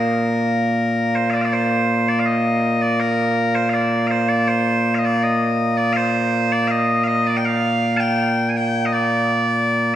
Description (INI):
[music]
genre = scottish traditional, Scottish pipe music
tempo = 81 BPM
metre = 2/4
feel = straight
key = Bb major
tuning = A4 = 439 Hz
[part]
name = loud bright bagpipes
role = solo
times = 0.0-10.0 s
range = Bb2 to A5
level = -16 LUFS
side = equal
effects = none
[sound]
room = wet concert hall reverb, RT60 2.6 s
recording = heard from further back in the room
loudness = -16 LUFS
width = side -11 dB against mid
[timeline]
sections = 0.0-1.5 A section; 1.5-10.0 A section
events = none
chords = none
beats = | 0.04 0.78 | 1.52 2.26 | 3.00 3.75 | 4.49 5.23 | 5.97 6.71 | 7.45 8.19 | 8.93 9.67